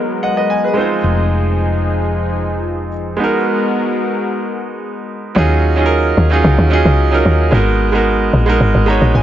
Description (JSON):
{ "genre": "amapiano", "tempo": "111 BPM", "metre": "4/4", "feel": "straight", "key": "Eb minor", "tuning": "A4 = 437 Hz", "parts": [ { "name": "clear concert grand piano", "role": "accompaniment", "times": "0.0-9.2 s", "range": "Gb3 to Bb5", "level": "-16 LUFS", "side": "right 2 dB", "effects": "none" }, { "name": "lush unison pad", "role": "sustained chords", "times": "0.0-5.3 s", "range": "F3 to Bb4", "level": "-21 LUFS", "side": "left 3 dB", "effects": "chorus" }, { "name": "hollow-body short-scale fingered electric bass", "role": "bass", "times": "1.0-3.2 s", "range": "F1", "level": "-18 LUFS", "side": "equal", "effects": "none" }, { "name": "tight log drum bass", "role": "bass", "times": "5.4-9.2 s", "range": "Ab1 to Eb2", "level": "-12 LUFS", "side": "equal", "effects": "none" } ], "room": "light reverb", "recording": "nothing above 7.8 kHz", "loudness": "-12 LUFS", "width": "side -11 dB against mid", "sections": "0.0-5.4 A section; 5.4-9.2 B section", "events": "grand piano fill 0.0-1.0, 8.6-9.2; drop 5.4-9.2", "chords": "0.0 Abm9; 0.8 Fm7; 3.2 Abm9; 5.4 Ebm11; 7.5 Abm9" }